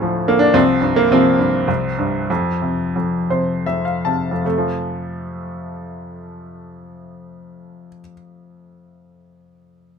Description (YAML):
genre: classical, lyrical solo piano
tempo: 74-111 BPM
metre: 3/4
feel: rubato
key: F major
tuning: A4 = 442 Hz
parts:
  - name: bright baby grand piano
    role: solo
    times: 0.0-10.0 s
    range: C2 to A5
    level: -17 LUFS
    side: equal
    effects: none
room: light reverb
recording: none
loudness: -15 LUFS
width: side -6 dB against mid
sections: 0.0-4.4 A section; 4.4-9.2 B section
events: slowing down 0.6-4.4; grand piano fill 3.0-4.4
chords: 0.0 Dm; 0.6 Csus4; 2.3 F5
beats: 0.02 | 0.56 1.11 1.69 | 2.30 2.95 3.67 | 4.45 5.25 6.02 | 6.79 7.56 8.35